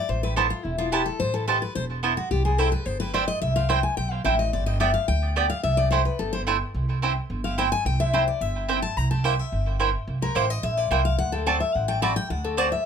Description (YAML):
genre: bluegrass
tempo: 216 BPM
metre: 4/4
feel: straight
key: C major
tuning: A4 = 439 Hz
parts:
  - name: picked steel-string acoustic guitar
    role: accompaniment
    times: 0.0-12.9 s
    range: E4 to B5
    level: -26 LUFS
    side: left 5 dB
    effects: none
  - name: upright bass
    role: bass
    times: 0.1-12.7 s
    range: E1 to D2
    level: -26 LUFS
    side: right 1 dB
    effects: none
  - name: mandolin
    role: stabs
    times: 0.4-12.7 s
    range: A3 to A5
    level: -26 LUFS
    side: right 5 dB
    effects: tape echo
room: light reverb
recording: close, detailed microphones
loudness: -22 LUFS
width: side -7 dB against mid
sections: 0.0-6.7 A section; 6.7-12.9 A section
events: steel-string acoustic guitar solo 0.0-12.9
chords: 0.1 Amadd9; 2.3 C; 4.5 G; 5.6 C6; 6.7 C; 9.0 C7; 11.2 D7